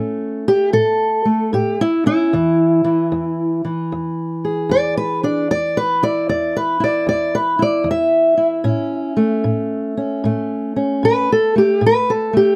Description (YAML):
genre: acoustic country blues, solo or duo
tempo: 76 BPM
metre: 4/4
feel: swing 66% on 8ths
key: E mixolydian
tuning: A4 = 440 Hz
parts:
  - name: fingerpicked steel-string acoustic guitar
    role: solo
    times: 0.0-12.6 s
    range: E2 to E5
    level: -18 LUFS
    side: equal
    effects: none
room: light reverb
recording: close, detailed microphones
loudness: -18 LUFS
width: mono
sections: 0.0-12.6 A section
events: steel-string acoustic guitar solo 0.0-12.6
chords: 0.0 A; 2.3 E7; 8.7 A